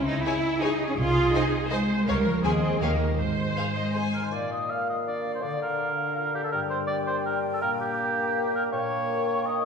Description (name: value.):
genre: cinematic, playful, whimsical film cue.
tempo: 164 BPM.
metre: 3/4.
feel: straight.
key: Ab major, Bb major from 4.3 s.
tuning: A4 = 441 Hz.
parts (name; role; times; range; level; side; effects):
rich studio viola section; accompaniment; 0.0-4.1 s; Fb4 to C5; -30 LUFS; right 1 dB; none.
concert harp; arpeggios; 0.0-9.7 s; G2 to D5; -33 LUFS; left 5 dB; none.
rich studio cello section; bass; 0.0-4.1 s; F3 to F4; -26 LUFS; right 1 dB; none.
rich studio double bass section; bass; 0.0-3.5 s; Ab1 to Eb2; -29 LUFS; right 1 dB; none.
warm studio violin section; second line; 0.2-4.0 s; G4 to Eb5; -35 LUFS; left 3 dB; none.
warm studio violin section; melody; 0.3-4.3 s; Eb5 to Ab5; -36 LUFS; left 6 dB; none.
mellow oboe; second line; 4.1-9.7 s; G4 to F5; -28 LUFS; right 2 dB; none.
mellow hollow concert flute; second line; 4.3-9.7 s; F5 to G5; -36 LUFS; left 2 dB; none.
warm bassoon; accompaniment; 4.3-9.7 s; Bb2 to Bb3; -32 LUFS; right 1 dB; none.
room: wet scoring stage reverb, RT60 1.8 s.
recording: heard from further back in the room.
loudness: -24 LUFS.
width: side -6 dB against mid.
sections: 0.0-4.3 A section; 4.3-9.7 B section.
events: none.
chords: 0.0 Dbm; 1.0 Ab/C; 2.1 Bbm/Db; 2.4 Ab/Eb; 2.8 Eb9; 3.2 Ab; 4.3 Bb; 5.4 Bb/D; 6.5 Gm; 7.6 Gm/Bb; 8.7 Eb7/Bb.